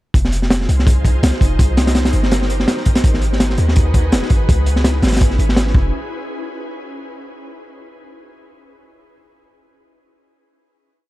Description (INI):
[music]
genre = drum and bass, jungle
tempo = 166 BPM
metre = 4/4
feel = swing 55% on 16ths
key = F minor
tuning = A4 = 441 Hz
[part]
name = ethereal airy pad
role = sustained chords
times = 0.4-5.9 s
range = Db4 to C5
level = -26 LUFS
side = equal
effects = ensemble chorus, built-in reverb, vintage 12-bit sampler grit
[part]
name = warm 808-style bass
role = bass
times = 0.1-5.9 s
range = Eb1 to Eb2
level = -16 LUFS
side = equal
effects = tube saturation
[part]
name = crunchy breakbeat drum kit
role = drums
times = 0.1-5.8 s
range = hi-hat, kick drum, snare drum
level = -15 LUFS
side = equal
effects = none
[sound]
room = small room ambience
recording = dark, warm production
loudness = -13 LUFS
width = side -17 dB against mid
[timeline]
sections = 0.1-5.9 drop; 5.9-7.4 final hit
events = drop 0.1-5.9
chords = 0.1 Fm7; 1.6 Cm7; 3.0 Abm7; 4.5 Dbm7; 5.7 Fm7; 5.9 N.C.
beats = | 0.15 0.51 0.87 1.23 | 1.59 1.95 2.32 2.68 | 3.04 3.40 3.76 4.12 | 4.48 4.85 5.21 5.57